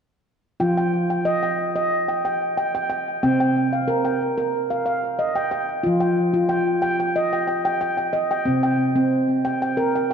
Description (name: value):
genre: world meditative, meditative tuned percussion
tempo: 92 BPM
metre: 4/4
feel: straight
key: unclear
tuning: A4 = 441 Hz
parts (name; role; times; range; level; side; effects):
- handpan; solo; 0.6-10.1 s; C3 to G5; -19 LUFS; equal; ping-pong delay
room: wet church reverb, RT60 3.3 s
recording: dark, warm production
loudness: -19 LUFS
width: side -7 dB against mid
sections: 0.6-5.9 A section; 5.9-10.1 B section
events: none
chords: 0.6 Ebadd9/F; 3.2 Cm; 5.9 Ebadd9/F; 8.5 C5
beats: | 0.60 1.26 1.92 2.57 | 3.23 3.89 4.54 5.20 | 5.85 6.51 7.16 7.82 | 8.47 9.13 9.78